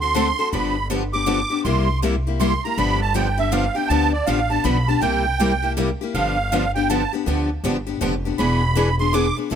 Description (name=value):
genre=acoustic string swing (jazz manouche)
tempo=160 BPM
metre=3/4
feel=swing 63% on 8ths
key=G mixolydian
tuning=A4 = 441 Hz
part: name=musette accordion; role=second line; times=0.0-9.4 s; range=D5 to D6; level=-23 LUFS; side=right 5 dB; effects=none
part: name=picked steel-string acoustic guitar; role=accompaniment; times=0.0-9.6 s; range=C3 to A4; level=-24 LUFS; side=left 9 dB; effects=none
part: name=upright bass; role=bass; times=0.0-9.6 s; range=E1 to D2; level=-24 LUFS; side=equal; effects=none
part: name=picked steel-string acoustic guitar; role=accompaniment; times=0.2-9.6 s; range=C3 to B4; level=-26 LUFS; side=right 5 dB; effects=none
room=light reverb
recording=none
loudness=-18 LUFS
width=side -8 dB against mid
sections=0.5-9.6 A section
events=accordion solo 0.0-9.6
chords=0.0 D7; 0.5 G7; 1.7 C7; 2.8 G7; 5.0 C7; 6.1 G7; 8.4 E7